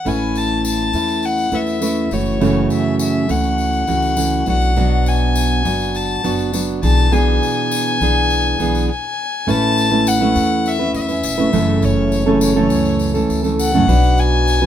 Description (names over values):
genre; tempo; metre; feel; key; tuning
acoustic pop; 102 BPM; 4/4; straight; A major; A4 = 441 Hz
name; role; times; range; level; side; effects
warm violin; melody; 0.0-14.7 s; C#5 to A5; -20 LUFS; left 4 dB; none
fingerpicked steel-string acoustic guitar; accompaniment; 0.1-14.7 s; F#2 to B4; -17 LUFS; right 2 dB; none
upright bass; bass; 0.1-14.7 s; E1 to E2; -20 LUFS; left 1 dB; none
tambourine; percussion; 0.1-14.6 s; none; -30 LUFS; left 5 dB; none
room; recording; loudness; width
little or no reverb; minimal, uncompressed stereo recording; -14 LUFS; side -10 dB against mid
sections
0.1-9.5 A section; 9.5-14.7 B section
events
stop 8.9-9.5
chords
0.1 Aadd9; 2.1 F#m7; 4.5 Bm; 6.8 E7/B; 9.5 Aadd9; 11.5 F#m7; 13.9 Bm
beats
| 0.05 0.64 1.23 1.82 | 2.41 3.00 3.58 4.17 | 4.76 5.35 5.94 6.53 | 7.12 7.71 8.30 8.88 | 9.47 10.06 10.65 11.24 | 11.83 12.42 13.01 13.60 | 14.19